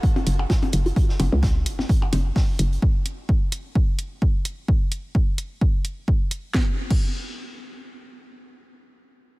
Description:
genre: minimal techno.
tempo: 129 BPM.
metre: 4/4.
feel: swing 55% on 16ths.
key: unclear.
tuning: A4 = 436 Hz.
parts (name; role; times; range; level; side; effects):
resonant blip pluck; riff; 0.0-0.9 s; F#4 to F#5; -33 LUFS; right 1 dB; phaser, sidechain pumping, diffuse ambient delay.
electronic kick drum; drums; 0.0-7.0 s; none; -20 LUFS; equal; none.
raw garage drum kit; drums; 0.0-2.8 s; hi-hat, snare drum; -40 LUFS; right 1 dB; sidechain pumping on hats, high-pass filter on hats, high-pass filter on snare, high-pass filter on room.
percussion blips; percussion; 0.2-2.2 s; none; -31 LUFS; left 3 dB; diffuse ambient delay.
hollow knocking FM bass; bass; 0.3-2.8 s; F#1 to C#2; -21 LUFS; equal; tube saturation, sidechain pumping.
garage drum kit; drums; 0.3-7.0 s; crash cymbal, hi-hat, snare drum; -30 LUFS; right 1 dB; overdrive.
room: little or no reverb.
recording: none.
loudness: -20 LUFS.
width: side -22 dB against mid.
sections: 0.0-6.5 A section; 6.5-9.4 B section.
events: none.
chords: 0.0 F#5; 6.5 N.C..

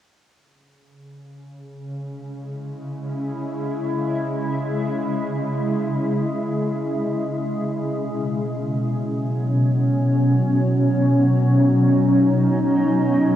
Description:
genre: ambient.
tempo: free time.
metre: none.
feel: none.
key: C# minor.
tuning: A4 = 442 Hz.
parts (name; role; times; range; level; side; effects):
shimmering ambient pad; sustained chords; 1.8-13.4 s; B2 to E4; -19 LUFS; equal; chorus, built-in reverb.
room: wet huge ambient reverb, RT60 8.9 s.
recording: worn, warbling old tape, cassette tape, warbly pitch drift.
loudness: -18 LUFS.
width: side -11 dB against mid.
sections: 0.4-13.4 A section.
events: fade-in on ambient pad 0.4-13.4.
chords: 0.4 C#m; 7.7 B.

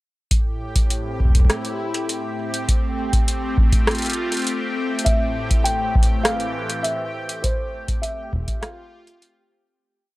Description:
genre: IDM.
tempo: 101 BPM.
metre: 4/4.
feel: straight.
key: A minor.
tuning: A4 = 440 Hz.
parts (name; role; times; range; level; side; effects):
phased analog pad; sustained chords; 0.3-9.8 s; A2 to F4; -27 LUFS; left 1 dB; phaser, chorus.
electro analog drum machine; drums; 0.3-9.3 s; hi-hat, rim click; -24 LUFS; equal; none.
electronic kick drum; drums; 0.3-8.6 s; none; -18 LUFS; equal; none.
bubbling stepped-filter texture; texture; 0.3-9.8 s; G4 to G5; -32 LUFS; equal; chorus, built-in reverb, sidechain pumping.
felt-muted upright piano; melody; 5.0-9.2 s; C5 to G5; -26 LUFS; equal; none.
room: light reverb.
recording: dry, gritty hardware recording, transformer saturation, cassette tape.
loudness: -19 LUFS.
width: side -18 dB against mid.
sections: 0.3-9.8 groove.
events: fade-out 6.6-9.8.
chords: 0.3 Am; 2.7 F; 5.1 Am; 7.4 F.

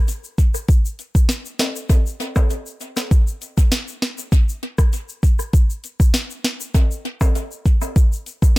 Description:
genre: dancehall.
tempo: 99 BPM.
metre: 4/4.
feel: straight.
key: none.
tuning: none.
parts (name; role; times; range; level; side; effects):
afro-pop drum kit; drums; 0.1-8.6 s; hi-hat, kick drum, rim click, snare drum; -15 LUFS; equal; tape echo.
egg shaker and timbales; percussion; 0.1-8.6 s; none; -30 LUFS; left 2 dB; tape echo.
room: digital ambience.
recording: echo-heavy mix.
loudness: -17 LUFS.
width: side -21 dB against mid.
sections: 0.0-3.1 A section; 3.1-8.6 B section.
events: none.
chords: none.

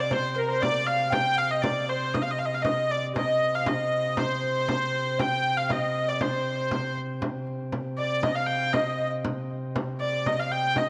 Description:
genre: medieval dance.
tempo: 118 BPM.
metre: 2/4.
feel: straight.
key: C minor.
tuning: A4 = 440 Hz.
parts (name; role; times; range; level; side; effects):
rich hurdy-gurdy; melody; 0.0-10.9 s; Bb4 to G5; -29 LUFS; equal; none.
breathy mellow tenor recorder; second line; 0.0-10.9 s; Bb4 to G5; -34 LUFS; equal; none.
chamber organ, sparkling flutes; drone; 0.0-10.9 s; C3; -35 LUFS; equal; none.
frame drum; percussion; 0.1-10.9 s; none; -34 LUFS; equal; none.
room: wet echo chamber reverb, RT60 2.3 s.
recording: none.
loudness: -27 LUFS.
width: mono.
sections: 0.0-7.2 A section; 7.2-10.9 B section.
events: none.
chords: none.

